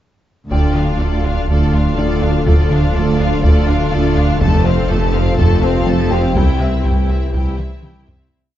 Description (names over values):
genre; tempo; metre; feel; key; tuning
cinematic, hybrid orchestral and electronic film score; 123 BPM; 4/4; straight; D minor; A4 = 440 Hz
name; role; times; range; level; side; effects
rich symphonic violin section; melody; 0.5-8.3 s; D5 to A5; -26 LUFS; left 4 dB; none
warm symphonic violin section; second line; 0.5-8.3 s; E4 to C5; -27 LUFS; left 3 dB; none
clear symphonic viola section; accompaniment; 0.5-8.3 s; A3 to F4; -25 LUFS; equal; none
deep dark ambient pad; sustained chords; 1.9-8.3 s; G3 to C5; -25 LUFS; left 2 dB; chorus, built-in reverb
warm French horn section; sustained chords; 0.5-8.0 s; E3 to A4; -26 LUFS; left 4 dB; none
round analog bass; riff; 0.5-8.2 s; C2 to F3; -20 LUFS; right 1 dB; none
mellow tuba; bass; 0.5-8.3 s; F1 to D2; -22 LUFS; right 2 dB; none
rich symphonic cello section; bass; 0.5-8.3 s; C2 to F2; -22 LUFS; right 2 dB; none
rich symphonic double bass section; bass; 0.5-8.3 s; F1 to D2; -21 LUFS; right 2 dB; none
sub bass with octave; bass; 0.5-8.3 s; D1 to C2; -22 LUFS; equal; none
taiko ensemble; drums; 0.5-8.3 s; none; -19 LUFS; equal; none
felt-muted upright piano; texture; 0.5-8.3 s; D4 to G5; -30 LUFS; left 4 dB; none
room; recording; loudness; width
light reverb; dark, warm production, nothing above 7.6 kHz; -12 LUFS; side -12 dB against mid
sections
0.5-8.3 theme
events
fade-out 6.4-8.3; drum fill 7.6-8.3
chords
0.5 Dm; 4.4 F; 6.4 C